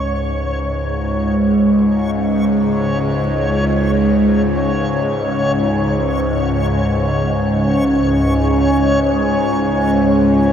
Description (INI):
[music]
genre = dark ambient drone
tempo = free time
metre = none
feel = none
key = unclear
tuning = A4 = 440 Hz
[part]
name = bowed-like drone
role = drone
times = 0.0-10.5 s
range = C#2 to G#2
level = -15 LUFS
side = equal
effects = built-in reverb, phaser
[part]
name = backwards swelling texture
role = texture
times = 0.0-10.5 s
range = C#5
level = -22 LUFS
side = left 2 dB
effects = built-in reverb, shimmer reverb
[part]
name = dark analog pad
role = sustained chords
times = 7.5-10.5 s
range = C#4 to G#5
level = -16 LUFS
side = equal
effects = wide subtle chorus, shimmer reverb
[sound]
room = wet huge ambient reverb, RT60 8.9 s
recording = none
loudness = -14 LUFS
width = side -8 dB against mid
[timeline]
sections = 0.0-10.5 A section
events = filter sweep on synth drone 0.0-10.5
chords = 0.0 C#5